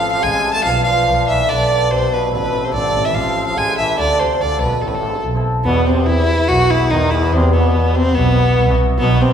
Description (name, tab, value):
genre	klezmer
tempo	144 BPM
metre	4/4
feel	straight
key	A harmonic minor, E harmonic minor from 5.7 s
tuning	A4 = 438 Hz
part	warm violin	melody	0.0-9.3 s	B3 to A5	-17 LUFS	equal	none
part	trombone with straight mute	second line	0.0-9.3 s	E2 to A3	-24 LUFS	right 2 dB	none
part	cimbalom	accompaniment	0.0-9.2 s	B3 to B4	-22 LUFS	left 1 dB	none
part	muted double bass	bass	0.0-9.1 s	A1 to E2	-18 LUFS	equal	none
room	wet recital hall reverb, RT60 1.4 s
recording	recorded in a church or concert hall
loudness	-13 LUFS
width	side -8 dB against mid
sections	0.0-5.7 A section; 5.7-9.3 B section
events	none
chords	0.0 Am; 0.6 Bdim; 2.3 Am; 4.0 Dm; 4.8 Am; 5.7 Em